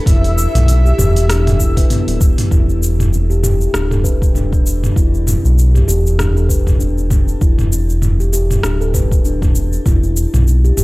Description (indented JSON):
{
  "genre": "organic downtempo",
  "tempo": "98 BPM",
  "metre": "4/4",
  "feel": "swing 57% on 16ths",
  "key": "E minor pentatonic",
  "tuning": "A4 = 442 Hz",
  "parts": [
    { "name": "breathy flute-like synth lead", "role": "melody", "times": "0.0-2.2 s", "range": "E5", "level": "-25 LUFS", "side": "right 1 dB", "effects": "ensemble chorus, analog delay, shimmer reverb" },
    { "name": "granular cloud pad", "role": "sustained chords", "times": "0.0-2.5 s", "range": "E4 to A4", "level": "-33 LUFS", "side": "equal", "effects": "none" },
    { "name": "steel tongue drum", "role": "arpeggios", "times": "0.1-10.8 s", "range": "B3 to B4", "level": "-22 LUFS", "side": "left 2 dB", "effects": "low-pass filter, analog delay, shimmer reverb" },
    { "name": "round analog bass", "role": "bass", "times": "0.1-10.8 s", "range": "D1 to B1", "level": "-14 LUFS", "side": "equal", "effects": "sidechain pumping" },
    { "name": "deep house drum kit", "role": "drums", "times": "0.1-10.8 s", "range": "hi-hat, rim click, shaker, toms", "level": "-19 LUFS", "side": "equal", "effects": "overdrive" },
    { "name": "electronic kick drum", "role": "drums", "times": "0.1-10.0 s", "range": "none", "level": "-14 LUFS", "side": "equal", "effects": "none" }
  ],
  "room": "little or no reverb",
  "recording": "dry, gritty hardware recording",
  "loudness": "-12 LUFS",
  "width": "side -21 dB against mid",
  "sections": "0.0-2.5 A section; 2.5-10.8 B section",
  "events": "filter sweep on steel tongue drum 2.5-10.8",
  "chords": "0.0 Em7"
}